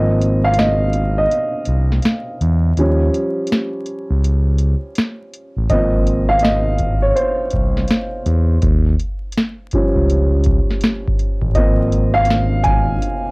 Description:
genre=lo-fi hip hop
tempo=82 BPM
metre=4/4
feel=swing 63% on 16ths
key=Ab major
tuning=A4 = 439 Hz
part: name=dark upright piano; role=accompaniment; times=0.0-13.3 s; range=F3 to Ab5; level=-18 LUFS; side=right 1 dB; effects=cassette tape
part: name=smooth gliding synth bass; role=bass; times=0.0-13.0 s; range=Ab1 to Fb2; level=-16 LUFS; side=equal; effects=tube saturation
part: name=booming analog drum machine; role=drums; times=0.2-13.2 s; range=hi-hat, kick drum, snare drum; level=-19 LUFS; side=equal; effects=vintage 12-bit sampler grit, cassette tape
room=light reverb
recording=home recording on cassette, vinyl crackle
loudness=-14 LUFS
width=side -29 dB against mid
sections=0.0-13.3 A section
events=break 0.0-5.7; upright piano solo 0.0-13.3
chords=0.0 Ab69; 2.8 Eb7; 5.7 Ab69; 8.6 Eb7; 11.6 Ab69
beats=0.58 1.31 2.04 | 2.77 3.50 4.24 4.97 | 5.70 6.43 7.16 7.89 | 8.62 9.36 10.09 10.82 | 11.55 12.28 13.02

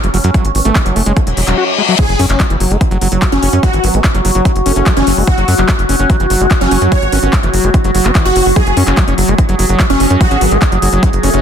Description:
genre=psychedelic trance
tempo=146 BPM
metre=4/4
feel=straight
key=F# minor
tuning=A4 = 440 Hz
part: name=overtone-sweeping drone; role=sustained chords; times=0.0-11.4 s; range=F#3 to G#4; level=-17 LUFS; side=equal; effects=chorus, built-in reverb, sidechain pumping
part: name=overdriven acid bass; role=riff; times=0.0-11.4 s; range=E3 to F#4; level=-18 LUFS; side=moving between left 7 dB and right 7 dB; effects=auto-pan, sidechain pumping, digital delay
part: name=tight sequencer bass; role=bass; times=0.0-11.4 s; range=E1 to F#2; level=-14 LUFS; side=equal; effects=tube saturation
part: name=techno drum kit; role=drums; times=0.0-11.4 s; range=crash cymbal, handclaps, hi-hat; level=-19 LUFS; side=left 1 dB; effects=none
part: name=electronic kick drum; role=drums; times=0.3-11.1 s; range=none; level=-13 LUFS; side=equal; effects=none
part: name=formant-sweep wobble bass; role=second line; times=0.5-0.7, 3.8-7.3, 10.4-11.4 s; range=A3 to B3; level=-26 LUFS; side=left 2 dB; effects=none
part: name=reverse cymbal and impact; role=sound effects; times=1.3-3.6 s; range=none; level=-18 LUFS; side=left 4 dB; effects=none
part: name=supersaw stab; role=melody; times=2.0-10.4 s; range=C#4 to C#5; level=-17 LUFS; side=equal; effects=phaser, sidechain pumping, ping-pong delay
room=light reverb, digital ambience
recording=dense, heavily limited modern master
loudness=-9 LUFS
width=side -8 dB against mid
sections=0.0-2.0 A section; 2.0-11.4 B section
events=reverse cymbal 1.3-2.0; drop 2.0-11.4; impact 2.0-3.6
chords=0.0 F#5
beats=| 0.34 0.76 1.17 1.58 | 1.99 2.40 2.81 3.22 | 3.63 4.04 4.45 4.86 | 5.28 5.69 6.10 6.51 | 6.92 7.33 7.74 8.15 | 8.56 8.97 9.38 9.80 | 10.21 10.62 11.03

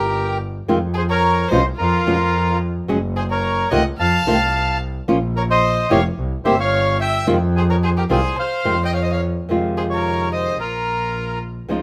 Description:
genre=tango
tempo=109 BPM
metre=4/4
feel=rubato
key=F minor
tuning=A4 = 440 Hz
part: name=bandoneon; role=melody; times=0.0-11.4 s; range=F4 to A5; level=-23 LUFS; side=equal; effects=none
part: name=clear violin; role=second line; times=0.0-11.4 s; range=F4 to F5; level=-28 LUFS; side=equal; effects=none
part: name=clear double bass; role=bass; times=0.0-11.8 s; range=F1 to F2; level=-24 LUFS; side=equal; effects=none
part: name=flamenco guitar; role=accompaniment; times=0.7-11.8 s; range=B2 to Ab4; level=-22 LUFS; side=equal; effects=none
room=light reverb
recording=none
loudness=-19 LUFS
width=mono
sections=0.0-9.5 A section; 9.5-11.8 A section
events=none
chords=0.0 C7(no3) (rootless); 0.7 Fm7; 1.8 N.C.; 2.9 Gbsus2; 4.0 F; 5.1 Bbm; 6.2 C; 7.3 Fm7; 10.6 Bb5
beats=0.13 | 0.68 1.23 1.78 2.34 | 2.89 3.44 3.98 4.53 | 5.08 5.63 6.17 6.72 | 7.27 7.82 8.37 8.93 | 9.48 10.04 10.59 11.15 | 11.70

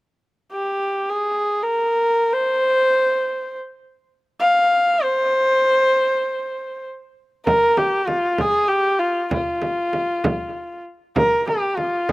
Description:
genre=Persian modal ensemble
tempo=free time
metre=none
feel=none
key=C dastgah shur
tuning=A4 = 440 Hz
part: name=rich kamancheh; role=melody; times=0.5-12.1 s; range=F4 to F5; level=-18 LUFS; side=equal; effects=slapback echo
part: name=frame drum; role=percussion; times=7.5-12.1 s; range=none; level=-24 LUFS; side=right 2 dB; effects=none
room=little or no reverb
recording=recorded outdoors, with no room sound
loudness=-17 LUFS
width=side -20 dB against mid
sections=0.1-7.5 A section; 7.5-12.1 B section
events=none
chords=none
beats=free time

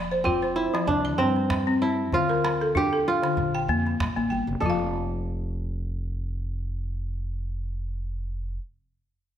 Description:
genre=west african traditional, West African string and xylophone music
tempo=96 BPM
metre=4/4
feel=swing 55% on 16ths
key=F major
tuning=A4 = 439 Hz
part: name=balafon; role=arpeggios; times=0.0-8.7 s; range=D3 to A5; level=-26 LUFS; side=left 2 dB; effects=none
part: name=upright bass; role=bass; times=0.0-8.6 s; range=F1 to G2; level=-31 LUFS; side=equal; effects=none
part: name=calabash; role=percussion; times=0.1-4.9 s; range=none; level=-31 LUFS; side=right 1 dB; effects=none
part: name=kora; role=melody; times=0.2-8.6 s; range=C4 to A4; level=-26 LUFS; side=right 2 dB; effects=none
room=wet recital hall reverb, RT60 1.2 s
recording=none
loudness=-24 LUFS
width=side -10 dB against mid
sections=0.0-4.6 A section; 4.6-7.1 B section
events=none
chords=0.0 F5; 0.9 C5; 2.1 Dm; 3.4 Bb5; 4.6 F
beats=0.25 0.88 1.50 | 2.12 2.75 3.37 4.00 | 4.62 5.24 5.87 6.49

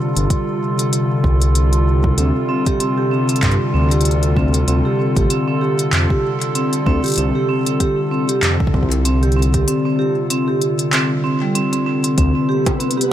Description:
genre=IDM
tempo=96 BPM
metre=4/4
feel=swing 56% on 16ths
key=unclear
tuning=A4 = 440 Hz
part: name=warbly tape-like pad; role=sustained chords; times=0.0-13.1 s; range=C3 to A4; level=-19 LUFS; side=equal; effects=chorus, built-in reverb
part: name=dark detuned saw bass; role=bass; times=0.2-12.3 s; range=G1 to G2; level=-16 LUFS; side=equal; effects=none
part: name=organic electronic drum kit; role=drums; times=0.2-13.1 s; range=bongos, handclaps, hi-hat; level=-23 LUFS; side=equal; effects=none
part: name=electronic kick drum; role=drums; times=0.3-12.8 s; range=none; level=-19 LUFS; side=equal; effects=none
part: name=vibraphone with medium mallets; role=arpeggios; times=2.2-13.1 s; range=G3 to G4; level=-20 LUFS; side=right 1 dB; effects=ping-pong delay
part: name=flickering grainy texture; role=texture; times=12.4-13.1 s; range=B3 to B4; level=-26 LUFS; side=left 3 dB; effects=built-in reverb
room=light reverb, digital ambience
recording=none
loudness=-14 LUFS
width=side -11 dB against mid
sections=0.0-12.2 A section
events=none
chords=0.0 C5; 2.2 Dm7; 7.2 C5; 12.2 Dm7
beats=0.30 0.93 1.55 | 2.18 2.80 3.43 4.05 | 4.68 5.30 5.93 6.55 | 7.18 7.80 8.43 9.05 | 9.68 10.30 10.93 11.55 | 12.18 12.80

